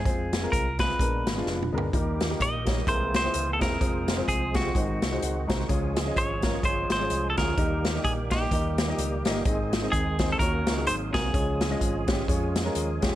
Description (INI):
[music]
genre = uptempo gospel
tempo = 128 BPM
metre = 4/4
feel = swing 57% on 8ths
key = Ab major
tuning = A4 = 442 Hz
[part]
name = semi-hollow electric guitar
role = melody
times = 0.0-13.0 s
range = Gb4 to Eb5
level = -30 LUFS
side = equal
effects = none
[part]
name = warm concert grand piano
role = accompaniment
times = 0.0-13.2 s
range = Ab2 to Bb5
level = -31 LUFS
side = left 2 dB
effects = none
[part]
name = fingered electric bass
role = bass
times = 0.0-13.2 s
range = E1 to F2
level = -32 LUFS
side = equal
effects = none
[part]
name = swinging big-band drum kit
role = drums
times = 0.1-13.1 s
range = hi-hat, kick drum, snare drum, toms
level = -28 LUFS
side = equal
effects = none
[part]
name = bright tonewheel organ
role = sustained chords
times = 1.9-13.2 s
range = Eb3 to Ab4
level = -34 LUFS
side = right 3 dB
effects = slow rotary speaker, chorus vibrato
[sound]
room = light reverb, small room reverb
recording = none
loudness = -24 LUFS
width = side -14 dB against mid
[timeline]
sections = 0.0-13.2 A section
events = drum fill 1.5-1.9; grand piano fill 5.0-5.7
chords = 0.1 Fm; 1.0 Bb7b9; 1.9 Eb; 2.9 C7b13; 3.8 Fm; 4.8 Ab7; 5.7 Db; 7.6 Eb; 9.5 Ab; 10.4 Ebm7; 10.9 Ab9; 11.3 Db